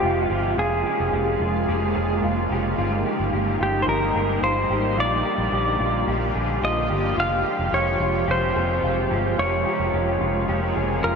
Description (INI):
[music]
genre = dream pop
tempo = 109 BPM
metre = 4/4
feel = straight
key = unclear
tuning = A4 = 437 Hz
[part]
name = clean lap steel guitar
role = melody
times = 0.0-11.2 s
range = G4 to F5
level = -24 LUFS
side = equal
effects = diffuse ambient delay
[part]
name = raw garage guitar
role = accompaniment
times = 0.0-11.2 s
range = Bb2 to Bb4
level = -31 LUFS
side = right 2 dB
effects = overdrive, harmonic tremolo, wide subtle chorus
[part]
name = shimmering ambient pad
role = sustained chords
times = 0.0-11.2 s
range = C3 to G4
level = -26 LUFS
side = equal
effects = chorus, built-in reverb
[part]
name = mellow electric guitar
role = arpeggios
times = 0.0-11.2 s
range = F4 to Ab4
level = -29 LUFS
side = left 1 dB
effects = ensemble chorus, diffuse ambient delay
[part]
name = vintage muted fingered electric bass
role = bass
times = 0.0-11.2 s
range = F1 to Bb1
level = -27 LUFS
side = equal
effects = none
[sound]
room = wet cathedral reverb, RT60 6.5 s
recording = dreamy mix soaked in reverb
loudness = -20 LUFS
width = side -5 dB against mid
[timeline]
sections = 0.0-11.2 A section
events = none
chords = 0.0 Fmadd9; 0.6 Db6/F; 2.8 Eb/G; 5.0 Bb6; 7.2 Fmadd9; 9.4 Db6/F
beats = 0.03 | 0.58 1.13 1.68 2.23 | 2.78 3.33 3.88 4.43 | 4.98 5.53 6.08 6.63 | 7.18 7.74 8.29 8.84 | 9.39 9.94 10.49 11.04